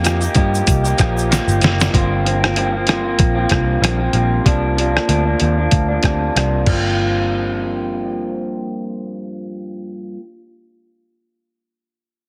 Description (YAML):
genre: indie pop, bedroom pop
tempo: 95 BPM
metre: 4/4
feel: swing 55% on 16ths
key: G minor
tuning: A4 = 438 Hz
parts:
  - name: electric guitar through a small old amp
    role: accompaniment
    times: 0.0-10.2 s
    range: G2 to G4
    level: -22 LUFS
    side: equal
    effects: subtle chorus, warbly pitch drift, low-pass filter
  - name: vintage muted picked electric bass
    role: bass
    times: 0.0-10.0 s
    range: F#1 to G2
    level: -21 LUFS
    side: equal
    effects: none
  - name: lo-fi sampler-style drum kit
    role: drums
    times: 0.0-6.8 s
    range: crash cymbal, hi-hat, kick drum, rim click, shaker, snare drum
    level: -20 LUFS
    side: equal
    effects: overdrive
  - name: tube shaker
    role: percussion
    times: 0.1-1.9 s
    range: none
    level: -37 LUFS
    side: equal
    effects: none
room: light reverb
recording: heavily compressed radio sound, multiband compression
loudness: -17 LUFS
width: mono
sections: 0.0-1.9 A section; 1.9-7.0 B section; 7.0-9.5 C section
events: drum fill 1.3-1.9; filter sweep on clean electric guitar 1.9-7.0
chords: 0.0 F9sus4; 1.9 Gm7; 4.5 C9sus4; 6.7 Gm7